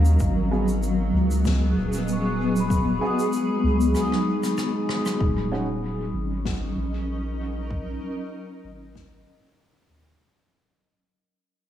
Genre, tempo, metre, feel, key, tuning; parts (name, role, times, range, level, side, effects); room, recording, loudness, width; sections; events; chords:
ambient dub; 96 BPM; 4/4; swing 54% on 16ths; Eb minor; A4 = 440 Hz
granular cloud pad; sustained chords; 0.0-10.2 s; Gb3 to Eb5; -26 LUFS; equal; built-in reverb
vibraphone with medium hard mallets; arpeggios; 0.0-6.3 s; Ab3 to Eb6; -30 LUFS; left 2 dB; dub echo
round analog bass; bass; 0.0-10.2 s; Eb1 to Eb2; -24 LUFS; equal
shaker, snare drum and rim click; drums; 0.1-9.1 s; -35 LUFS; left 2 dB; dub echo
electronic kick drum; drums; 0.2-9.1 s; -26 LUFS; equal
dark upright piano; stabs; 0.5-5.7 s; Cb4 to Ab4; -34 LUFS; right 2 dB; lush chorus, dub echo
moderate plate reverb, RT60 1.7 s, studio reverb; dreamy mix soaked in reverb, small room reverb; -22 LUFS; side -11 dB against mid
0.0-5.2 A section; 5.2-10.2 B section
break 4.0-5.2; drum fill 4.0-5.2; fade-out 5.2-10.2; filter sweep on analog synth bass 5.2-10.2
0.2 Abm7; 5.2 Ebm7